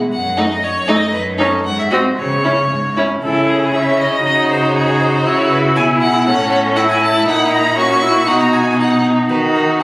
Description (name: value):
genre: quick classical-period movement for string quartet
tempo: 118 BPM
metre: 2/4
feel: straight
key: C# minor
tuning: A4 = 440 Hz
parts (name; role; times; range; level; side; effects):
- rich cello; bass; 0.0-9.8 s; F#2 to D#3; -18 LUFS; equal; none
- bright violin; melody; 0.1-9.8 s; G#4 to C#6; -18 LUFS; left 1 dB; none
- rich violin; second line; 0.4-9.8 s; C#4 to A4; -19 LUFS; equal; none
- rich viola; accompaniment; 0.4-9.8 s; A3 to E4; -16 LUFS; equal; none
room: wet recital hall reverb, RT60 1.7 s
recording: recorded on a phone in the room, club reverb, compression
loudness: -12 LUFS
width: side -22 dB against mid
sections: 0.0-3.2 A section; 3.2-9.8 B section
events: none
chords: 0.1 D#dim/F#; 1.1 D#m7b5/F#; 1.6 G#7; 2.2 C#m; 4.2 C#sus24; 5.3 C#m; 6.3 A; 7.3 F#7/A#; 8.3 B; 9.3 B/D# (rootless)